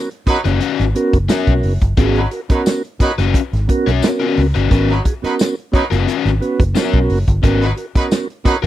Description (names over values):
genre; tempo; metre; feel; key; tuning
funk; 88 BPM; 4/4; straight; G# minor; A4 = 440 Hz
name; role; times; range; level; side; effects
mellow tonewheel organ; stabs; 0.0-8.7 s; B3 to C#5; -19 LUFS; right 3 dB; slow rotary speaker
warm soul drum kit; drums; 0.1-8.7 s; hi-hat, kick drum, snare drum; -16 LUFS; equal; none
warm horn section; second line; 0.3-8.6 s; F#3 to B4; -20 LUFS; right 2 dB; none
vintage muted fingered electric bass; bass; 0.3-8.7 s; F#1 to C#2; -17 LUFS; equal; none
crunchy overdriven guitar; accompaniment; 0.4-8.7 s; C#4 to C#5; -20 LUFS; left 11 dB; spring reverb
tambourine; percussion; 1.3-8.3 s; none; -31 LUFS; left 8 dB; none
room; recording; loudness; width
little or no reverb; none; -14 LUFS; side -13 dB against mid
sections
0.0-8.7 A section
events
none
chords
0.0 G#m11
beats
0.61 1.29 | 1.98 2.66 3.34 4.03 | 4.71 5.39 6.07 6.75 | 7.43 8.11